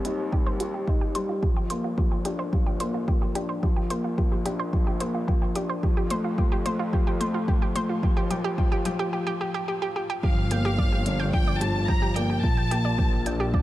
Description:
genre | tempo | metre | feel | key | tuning
piano and strings electronica | 109 BPM | 4/4 | straight | G minor | A4 = 441 Hz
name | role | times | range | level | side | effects
dark upright piano | riff | 0.0-13.6 s | F3 to G4 | -28 LUFS | left 2 dB | tape echo
bright studio double bass section | bass | 0.0-13.6 s | G1 to F2 | -32 LUFS | equal | sidechain pumping, high-pass filter
analog pluck | arpeggios | 0.1-13.6 s | F4 to G5 | -32 LUFS | right 2 dB | chorus, sidechain pumping, tape echo
electronic hi-hat | drums | 0.1-13.4 s | none | -38 LUFS | right 2 dB | overdrive
electronic kick drum | drums | 0.3-13.6 s | none | -24 LUFS | equal | none
clear studio violin section | melody | 10.2-13.5 s | F5 to Bb5 | -31 LUFS | left 1 dB | none
room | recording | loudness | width
light reverb, small room reverb | none | -23 LUFS | side -15 dB against mid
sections
0.0-10.2 A section; 10.2-13.6 B section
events
build-up 0.0-10.2; filter sweep on synth arpeggio sound 0.0-10.2; break 9.1-10.2; drop 10.2-13.6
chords
0.0 Eb6; 1.4 Gm7; 3.6 Bb; 5.8 F; 8.0 Eb; 10.2 Gm7; 12.4 Bbmaj7

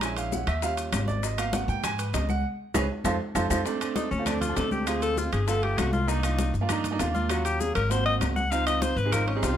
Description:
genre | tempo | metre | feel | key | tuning
Afro-Cuban jazz | 198 BPM | 4/4 | straight | unclear | A4 = 438 Hz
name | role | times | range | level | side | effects
clear baby grand piano | accompaniment | 0.0-9.6 s | Gb3 to G#5 | -30 LUFS | right 5 dB | none
upright bass | bass | 0.0-9.6 s | G1 to G#2 | -29 LUFS | equal | none
bongos | percussion | 0.0-9.6 s | none | -37 LUFS | left 8 dB | none
claves | percussion | 0.0-9.3 s | none | -38 LUFS | left 10 dB | none
congas | percussion | 0.0-9.6 s | none | -34 LUFS | left 2 dB | none
maracas | percussion | 0.0-9.6 s | none | -40 LUFS | left 9 dB | none
timbales | percussion | 0.0-9.6 s | none | -36 LUFS | right 5 dB | none
bright alto saxophone | melody | 4.0-9.6 s | Db4 to Gb5 | -28 LUFS | left 4 dB | none
room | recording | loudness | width
light reverb | none | -24 LUFS | side -10 dB against mid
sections
0.0-3.7 A section; 3.7-9.6 A section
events
grand piano solo 0.0-3.7; drum fill 2.4-3.7; band accent 2.4-3.7; alto saxophone solo 3.7-9.6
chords
0.0 A#m7b5; 0.6 D#7; 1.2 G#m7; 2.4 C#5; 3.0 F; 3.7 D7(no3); 4.9 Dm7b5; 5.5 G7; 6.1 Cm7; 7.3 Ebm7; 7.9 Ab7; 8.5 Dbmaj9

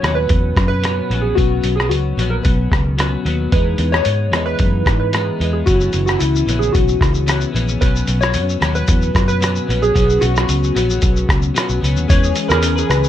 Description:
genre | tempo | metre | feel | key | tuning
indie pop, bedroom pop | 112 BPM | 4/4 | straight | unclear | A4 = 439 Hz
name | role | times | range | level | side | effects
warm analog keys | melody | 0.0-13.1 s | E4 to C#5 | -20 LUFS | equal | lush chorus, tape echo
twelve-string electric guitar | accompaniment | 0.0-13.1 s | F#2 to B4 | -23 LUFS | left 4 dB | analog chorus, vibrato effect
vintage muted fingered electric bass | bass | 0.0-13.1 s | F#1 to G#2 | -18 LUFS | equal | none
lo-fi sampler-style drum kit | drums | 0.0-13.1 s | hi-hat, kick drum, rim click, shaker | -18 LUFS | equal | none
hollow soft pad | sustained chords | 12.1-13.1 s | E3 to G#4 | -22 LUFS | equal | ensemble chorus
room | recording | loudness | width
light reverb | dark, warm production, lossy compression artefacts | -14 LUFS | side -11 dB against mid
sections
0.0-12.1 A section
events
none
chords
0.0 Bsus2; 3.5 Emaj7; 5.7 F#7sus4; 7.8 Bsus2; 12.1 E6

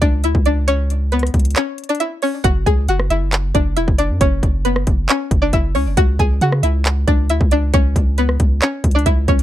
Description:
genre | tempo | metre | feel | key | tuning
hip hop, trap | 136 BPM | 4/4 | half-time | unclear | A4 = 440 Hz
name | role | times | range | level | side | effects
string-like resonator pluck | melody | 0.0-9.4 s | B3 to G#5 | -20 LUFS | left 1 dB | chorus, low-pass filter, digital delay
long sustained 808-style bass | bass | 0.0-9.4 s | E1 to C#3 | -18 LUFS | equal | none
trap drum kit | drums | 0.0-9.4 s | handclaps, hi-hat, kick drum, rim click | -17 LUFS | equal | none
room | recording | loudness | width
little or no reverb | dark, warm production | -14 LUFS | side -13 dB against mid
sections
0.0-2.4 A section; 2.4-9.4 B section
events
break 1.6-2.4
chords
0.0 C#m; 2.4 F#5; 6.0 C#m

